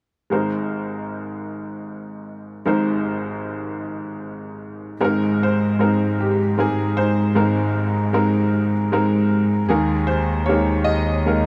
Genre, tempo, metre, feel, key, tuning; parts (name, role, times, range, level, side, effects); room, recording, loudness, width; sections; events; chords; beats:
folk; 77 BPM; 3/4; straight; Ab major; A4 = 439 Hz
bright upright piano; melody; 0.3-11.5 s; Ab1 to Eb5; -23 LUFS; equal; plate reverb
warm cello; bass; 5.0-11.5 s; Eb2 to Ab2; -23 LUFS; equal
light reverb; -20 LUFS; mono
0.3-5.0 A section; 5.0-11.5 B section
0.3 Abadd9; 9.7 Ebsus4
| 0.31 1.09 1.88 | 2.66 3.44 4.23 | 5.01 5.79 6.58 | 7.36 8.14 8.92 | 9.70 10.48 11.26